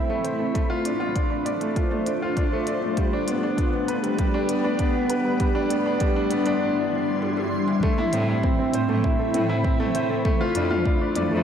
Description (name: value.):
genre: piano and strings electronica.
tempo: 99 BPM.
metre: 4/4.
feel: straight.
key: A minor.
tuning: A4 = 440 Hz.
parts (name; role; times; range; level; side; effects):
granular cloud pad; sustained chords; 0.0-11.4 s; G3 to C6; -28 LUFS; left 1 dB; built-in reverb, analog chorus, sidechain pumping.
clear upright piano; riff; 0.0-11.4 s; G3 to D5; -24 LUFS; equal; tape echo.
minimal click drum kit; drums; 0.1-11.3 s; hi-hat, toms; -34 LUFS; equal; high-pass filter on snare, high-pass filter on hats, high-pass filter on toms, high-pass filter on room.
electronic kick drum; drums; 0.6-11.0 s; none; -24 LUFS; equal; overdrive.
clear chamber cello section; bass; 8.1-11.4 s; F2 to A2; -28 LUFS; equal; sidechain pumping.
room: wet lush hall reverb, RT60 1.9 s, digital ambience.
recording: dreamy mix soaked in reverb.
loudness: -21 LUFS.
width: side -8 dB against mid.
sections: 0.0-7.8 A section; 7.8-11.4 B section.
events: build-up 0.0-7.8; drum fill 7.2-7.8; drop 7.8-11.4.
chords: 0.0 Amadd9; 0.6 F6; 3.0 Gadd9; 5.4 Cadd9; 7.8 Amadd9; 10.2 F6.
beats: | 0.55 1.16 1.76 2.37 | 2.98 3.58 4.19 4.79 | 5.40 6.01 6.61 7.22 | 7.82 8.43 9.04 9.64 | 10.25 10.85.